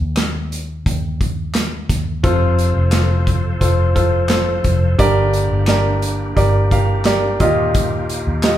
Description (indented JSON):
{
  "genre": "piano-driven pop",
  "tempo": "87 BPM",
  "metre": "4/4",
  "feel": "straight",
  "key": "G minor",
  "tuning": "A4 = 440 Hz",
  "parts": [
    { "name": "vintage muted fingered electric bass", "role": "bass", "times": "0.0-8.6 s", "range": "F1 to Eb2", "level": "-18 LUFS", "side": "equal", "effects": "none" },
    { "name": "loose indie drum kit", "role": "drums", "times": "0.2-8.6 s", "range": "handclaps, hi-hat, kick drum, snare drum", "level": "-20 LUFS", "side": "equal", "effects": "none" },
    { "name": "clear baby grand piano", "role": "accompaniment", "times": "2.2-8.6 s", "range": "G2 to F5", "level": "-18 LUFS", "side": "equal", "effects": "none" },
    { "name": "bright tonewheel organ", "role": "sustained chords", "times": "2.2-8.6 s", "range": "F3 to C5", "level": "-28 LUFS", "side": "left 1 dB", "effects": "chorus vibrato, fast rotary speaker" }
  ],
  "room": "moderate large studio reverb, RT60 1.1 s",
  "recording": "band playing live in one room",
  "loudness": "-14 LUFS",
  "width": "side -12 dB against mid",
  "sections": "0.0-8.6 A section",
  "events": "none",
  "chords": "0.0 N.C.; 2.2 F; 5.0 Gm; 7.4 Ebadd9"
}